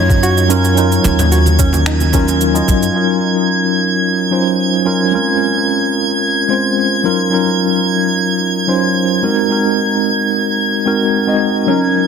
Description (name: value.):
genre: sunset chillout.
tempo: 110 BPM.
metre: 4/4.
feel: straight.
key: Eb dorian.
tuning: A4 = 437 Hz.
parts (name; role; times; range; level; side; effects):
mellow tine electric piano; accompaniment; 0.0-12.1 s; Gb3 to Eb5; -14 LUFS; moving between left 5 dB and right 4 dB; medium stereo tremolo, auto-pan, digital delay, shimmer reverb.
soft round pluck; arpeggios; 0.0-2.4, 11.7-11.9 s; Db4 to Gb4; -21 LUFS; right 5 dB; chorus, vintage 12-bit sampler grit, digital delay, shimmer reverb.
upright bass; bass; 0.0-2.9 s; Eb2 to Gb2; -15 LUFS; equal; none.
drifting glass-harmonics texture; texture; 0.0-12.1 s; Ab6; -18 LUFS; right 2 dB; chorus, built-in reverb, shimmer reverb.
electronic cabasa and finger snaps; drums; 0.1-2.9 s; none; -23 LUFS; right 4 dB; soft clipping on snare.
electronic kick drum; drums; 0.1-2.8 s; none; -15 LUFS; equal; none.
congas; percussion; 0.1-2.2 s; none; -25 LUFS; right 3 dB; none.
room: moderate plate reverb, RT60 2.8 s.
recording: dense, heavily limited modern master.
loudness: -12 LUFS.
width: side -6 dB against mid.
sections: 0.0-3.0 A section; 3.0-12.1 B section.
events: none.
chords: 0.0 Ebm7; 5.1 Bbm7; 7.0 Ebm7; 9.2 Ab7.